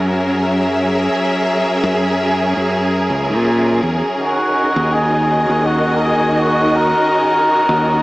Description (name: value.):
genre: ambient dub.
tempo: 82 BPM.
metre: 4/4.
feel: swing 55% on 16ths.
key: F# mixolydian.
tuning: A4 = 442 Hz.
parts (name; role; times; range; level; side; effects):
clear studio string section; sustained chords; 0.0-8.0 s; D#3 to E5; -16 LUFS; equal; none.
modern bright fingered electric bass; bass; 0.0-8.0 s; C#2 to A#2; -18 LUFS; equal; none.
trumpet with cup mute; melody; 4.2-8.0 s; F#4 to A#4; -16 LUFS; equal; dub echo.
room: wet plate reverb, RT60 2.7 s.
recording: dreamy mix soaked in reverb, small speaker sound.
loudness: -13 LUFS.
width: side -19 dB against mid.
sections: 0.0-8.0 A section.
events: none.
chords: 0.0 F#7; 4.2 D#m7.